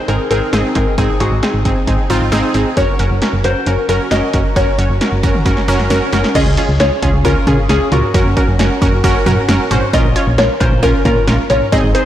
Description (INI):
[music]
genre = synth-pop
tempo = 134 BPM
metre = 4/4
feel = straight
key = Db major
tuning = A4 = 440 Hz
[part]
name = open-back banjo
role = melody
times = 0.0-12.1 s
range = Gb4 to Eb5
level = -18 LUFS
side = left 2 dB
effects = analog delay
[part]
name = wide unison pluck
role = accompaniment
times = 0.1-12.1 s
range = C4 to Db5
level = -16 LUFS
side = right 1 dB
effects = none
[part]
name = solid FM bass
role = bass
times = 0.1-11.9 s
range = Gb1 to Db3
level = -16 LUFS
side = equal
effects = none
[part]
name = punchy analog drum machine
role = drums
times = 0.1-12.1 s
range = crash cymbal, hi-hat, kick drum, snare drum, toms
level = -17 LUFS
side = equal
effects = none
[part]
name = swell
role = sound effects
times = 5.1-6.4 s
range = none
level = -29 LUFS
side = right 1 dB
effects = none
[sound]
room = moderate lush hall reverb, RT60 1.9 s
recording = blown-out, overdriven recording, overdrive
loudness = -11 LUFS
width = side -12 dB against mid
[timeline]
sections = 0.0-6.4 A section; 6.4-12.1 B section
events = drum fill 5.5-6.4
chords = 0.0 Abadd9; 2.8 Gb; 6.4 Db; 8.1 Gb; 9.9 Bbm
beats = 0.08 0.53 | 0.98 1.43 1.88 2.32 | 2.77 3.22 3.67 4.11 | 4.56 5.01 5.46 5.91 | 6.35 6.80 7.25 7.70 | 8.14 8.59 9.04 9.49 | 9.93 10.38 10.83 11.28 | 11.72